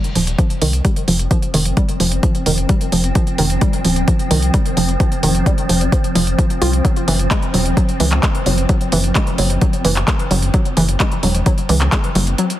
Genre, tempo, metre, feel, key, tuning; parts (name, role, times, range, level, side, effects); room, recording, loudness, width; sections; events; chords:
driving peak-time techno; 130 BPM; 4/4; straight; A4 = 440 Hz
swarming drone; drone; 0.6-12.6 s; F3 to C4; -24 LUFS; equal; built-in reverb, sidechain pumping
techno drum kit; drums; 0.0-12.6 s; handclaps, hi-hat; -22 LUFS; equal; sidechain pumping on hats, sidechain pumping on cymbals
warbly dusty pluck; riff; 0.2-12.4 s; Eb3 to F4; -20 LUFS; right 1 dB; chorus, tube saturation, sidechain pumping, ping-pong delay
tight sequencer bass; bass; 0.2-12.3 s; Eb1 to Db2; -17 LUFS; equal; sidechain pumping
electronic kick drum; drums; 0.4-12.0 s; -16 LUFS; equal; overdrive
light reverb; heavily compressed radio sound, multiband compression; -14 LUFS; side -13 dB against mid
0.0-12.6 A section
kick drops out 12.4
0.0 F5; 6.8 N.C.